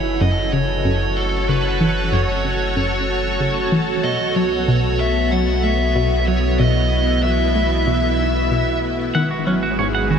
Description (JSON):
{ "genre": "ambient, sequencer-driven space music", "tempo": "94 BPM", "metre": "4/4", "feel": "straight", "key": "unclear", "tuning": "A4 = 440 Hz", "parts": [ { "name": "high-gain lead guitar", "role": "melody", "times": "0.0-8.8 s", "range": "A4 to F#5", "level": "-23 LUFS", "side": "left 1 dB", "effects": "distortion, tape echo" }, { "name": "string machine, full ensemble", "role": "sustained chords", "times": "0.0-10.2 s", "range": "G#3 to G#5", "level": "-21 LUFS", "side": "right 1 dB", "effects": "phaser, ensemble chorus" }, { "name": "warm sub bass", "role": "bass", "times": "0.0-10.2 s", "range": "F#1 to B1", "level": "-23 LUFS", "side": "equal", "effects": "none" }, { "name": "analog pluck", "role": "riff", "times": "0.2-10.2 s", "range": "F#2 to D#4", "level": "-22 LUFS", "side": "equal", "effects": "chorus, tape echo" }, { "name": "clean electric guitar", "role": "arpeggios", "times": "9.1-10.2 s", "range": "C#4 to F#5", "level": "-22 LUFS", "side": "right 4 dB", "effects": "auto-pan, tape echo" } ], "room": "wet huge ambient reverb, RT60 8.1 s", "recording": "none", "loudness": "-16 LUFS", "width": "side -7 dB against mid", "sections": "0.0-10.2 A section", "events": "filter sweep on synth arpeggio sound 0.0-10.2", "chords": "0.0 F#m; 4.0 B7sus4; 9.1 G#m", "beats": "0.21 0.85 | 1.49 2.13 2.77 3.40 | 4.04 4.68 5.32 5.96 | 6.60 7.23 7.87 8.51 | 9.15 9.79" }